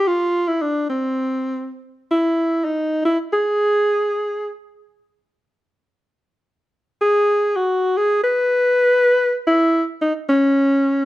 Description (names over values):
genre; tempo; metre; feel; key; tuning
jazz; free time; none; none; unclear; A4 = 440 Hz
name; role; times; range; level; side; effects
mellow alto saxophone; solo; 0.0-4.5, 7.0-11.1 s; C4 to B4; -16 LUFS; equal; none
room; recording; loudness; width
light reverb; none; -16 LUFS; side -16 dB against mid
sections
0.0-2.2 A section; 2.2-11.1 B section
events
none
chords
none